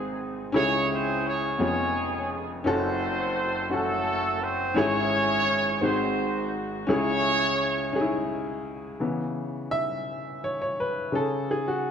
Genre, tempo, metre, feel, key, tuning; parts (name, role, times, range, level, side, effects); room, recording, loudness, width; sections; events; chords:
gospel; 57 BPM (dotted quarters); 6/8; straight; C# harmonic minor; A4 = 438 Hz
clear horn section; melody; 0.0-8.3 s; G#3 to C#5; -26 LUFS; right 1 dB
clear upright piano; accompaniment; 0.0-11.9 s; E#1 to E5; -26 LUFS; left 1 dB
moderate scoring stage reverb, RT60 1.9 s; -24 LUFS; side -8 dB against mid
0.0-9.0 A section; 9.0-11.9 B section
upright piano solo 9.0-11.9
0.0 G#; 0.5 C#m; 1.6 C#7/E#; 2.6 F#m; 4.8 C#m/G#; 5.8 G#7; 6.9 C#m; 9.0 C#m7; 11.1 C#sus4